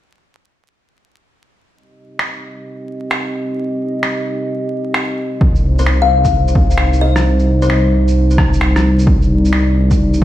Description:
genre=future garage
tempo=131 BPM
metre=4/4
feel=swing 66% on 16ths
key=C minor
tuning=A4 = 441 Hz
part: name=dark analog pad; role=sustained chords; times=1.7-10.2 s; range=G3 to Eb5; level=-19 LUFS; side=equal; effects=chorus, sidechain pumping
part: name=electronic finger snaps, shaker and rim click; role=drums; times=2.2-10.2 s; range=none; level=-21 LUFS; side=equal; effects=overdrive
part: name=dark detuned saw bass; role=bass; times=5.4-10.2 s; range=C2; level=-14 LUFS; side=equal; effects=sidechain pumping
part: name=electronic kick drum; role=drums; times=5.4-10.2 s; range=none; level=-14 LUFS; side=equal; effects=overdrive
part: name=kalimba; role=melody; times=5.8-8.1 s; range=C5 to F5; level=-19 LUFS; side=left 7 dB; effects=analog delay
room=light reverb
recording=played on a big sound system in a bare room, stone room reverb, vinyl crackle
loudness=-12 LUFS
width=side -13 dB against mid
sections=1.7-5.4 A section; 5.4-10.2 B section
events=filter sweep on analog synth pad 1.7-5.4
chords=1.7 Cm

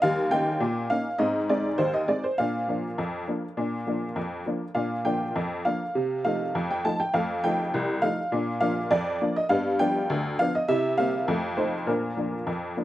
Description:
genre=ragtime piano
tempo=101 BPM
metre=2/4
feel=straight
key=Bb major from 4.8 s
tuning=A4 = 440 Hz
part: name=honky-tonk upright piano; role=solo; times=0.0-12.8 s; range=C2 to A5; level=-24 LUFS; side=equal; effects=none
room=little or no reverb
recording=recorded outdoors, with no room sound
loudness=-24 LUFS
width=side -14 dB against mid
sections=0.0-12.8 A section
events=none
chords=0.0 Eb7; 1.2 Ab; 2.4 Bb; 6.0 F7/C; 7.1 F7; 8.3 Bb; 9.5 G7; 10.7 C7; 11.3 F7; 11.9 Bb

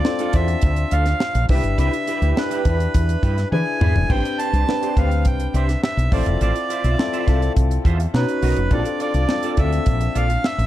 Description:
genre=polished 1980s jazz-funk pop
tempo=104 BPM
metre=4/4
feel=straight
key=unclear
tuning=A4 = 440 Hz
part: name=accordion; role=melody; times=0.0-10.7 s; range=B4 to A5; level=-25 LUFS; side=right 2 dB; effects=none
part: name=warm concert grand piano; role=accompaniment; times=0.0-10.7 s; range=C4 to A#5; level=-25 LUFS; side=left 4 dB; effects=wide subtle chorus
part: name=clean electric guitar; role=riff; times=0.0-10.6 s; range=D4 to E5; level=-30 LUFS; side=right 6 dB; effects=ensemble chorus
part: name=tight funk drum kit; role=drums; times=0.0-10.7 s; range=crash cymbal, hi-hat, kick drum, snare drum, toms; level=-21 LUFS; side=equal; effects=none
part: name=woody fretless electric bass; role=bass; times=0.3-10.7 s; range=E1 to E3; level=-19 LUFS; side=equal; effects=none
room=small room ambience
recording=dark, warm production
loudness=-17 LUFS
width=side -13 dB against mid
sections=0.0-10.7 A section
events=drum fill 3.5-4.1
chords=0.0 Bbmaj7 (rootless); 1.5 Cmaj7 (rootless); 3.5 E7; 4.1 Am11; 6.1 Dm9; 8.1 Bmaj7; 8.7 Bbmaj7

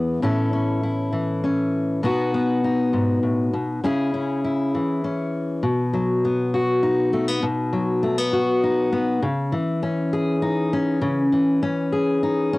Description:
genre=folk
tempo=67 BPM (dotted quarters)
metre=6/8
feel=straight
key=unclear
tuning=A4 = 440 Hz
part: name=fingerpicked steel-string acoustic guitar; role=solo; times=0.0-12.6 s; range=E2 to A4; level=-20 LUFS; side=left 1 dB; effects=none
room=moderate booth ambience, RT60 0.3 s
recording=home recording on cassette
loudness=-20 LUFS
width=side -20 dB against mid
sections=0.0-5.6 A section; 5.6-12.6 B section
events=none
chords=0.2 A; 2.0 B; 3.8 C#m; 5.6 B; 9.2 C#madd9

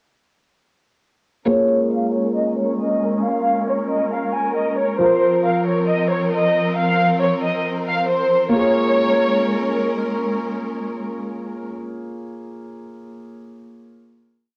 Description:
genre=hip hop, trap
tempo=136 BPM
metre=4/4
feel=half-time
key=Bb minor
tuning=A4 = 440 Hz
part: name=warm studio violin section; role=melody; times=1.5-9.8 s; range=C5 to Ab5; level=-22 LUFS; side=equal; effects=low-pass filter, cassette tape
part: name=dark concert grand piano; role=accompaniment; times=1.5-14.6 s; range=F3 to Db5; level=-26 LUFS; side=equal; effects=low-pass filter
part: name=warm symphonic string section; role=sustained chords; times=1.5-11.7 s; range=F3 to Bb4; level=-26 LUFS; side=equal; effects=low-pass filter
room=wet studio reverb, RT60 0.5 s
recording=home recording on cassette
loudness=-19 LUFS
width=mono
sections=1.5-8.5 breakdown; 8.5-12.1 final chord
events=filter sweep 1.5-8.5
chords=1.5 Bbm7; 5.0 Fsus4; 8.5 Bbm7

